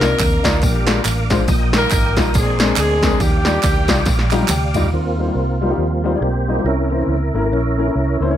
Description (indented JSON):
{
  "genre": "uptempo gospel",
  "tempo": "139 BPM",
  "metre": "4/4",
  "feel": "swing 60% on 8ths",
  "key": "Eb major",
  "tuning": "A4 = 440 Hz",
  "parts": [
    { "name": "mellow horn section", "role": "melody", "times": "0.0-4.5 s", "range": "G3 to Bb4", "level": "-21 LUFS", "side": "equal", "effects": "none" },
    { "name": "warm upright piano", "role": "accompaniment", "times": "0.0-8.4 s", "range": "Bb2 to Bb5", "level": "-22 LUFS", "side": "left 5 dB", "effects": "none" },
    { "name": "tonewheel organ", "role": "sustained chords", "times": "0.0-8.3 s", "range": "E3 to Eb6", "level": "-23 LUFS", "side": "right 2 dB", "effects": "fast rotary speaker, chorus vibrato" },
    { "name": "vintage muted fingered electric bass", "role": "bass", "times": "0.0-8.4 s", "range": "Ab1 to Eb2", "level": "-20 LUFS", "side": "equal", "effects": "none" },
    { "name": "punchy analog drum machine", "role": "drums", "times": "0.0-4.9 s", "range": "kick drum, ride cymbal, snare drum, toms", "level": "-18 LUFS", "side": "right 1 dB", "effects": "none" },
    { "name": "tambourine and handclaps", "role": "percussion", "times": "0.0-4.8 s", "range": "none", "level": "-26 LUFS", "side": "right 4 dB", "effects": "none" }
  ],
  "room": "light reverb, small room ambience",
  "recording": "none",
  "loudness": "-14 LUFS",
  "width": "side -11 dB against mid",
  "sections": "0.0-4.9 A section; 4.9-8.4 B section",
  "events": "drum fill 4.1-4.9; upright piano fill 4.1-4.9; tonewheel organ solo 4.9-8.4",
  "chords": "0.0 Cm11; 0.6 Bb7; 1.5 Eb/Bb; 2.3 Bb9; 3.2 Ebmaj9; 4.9 Eb69; 6.7 C7b9"
}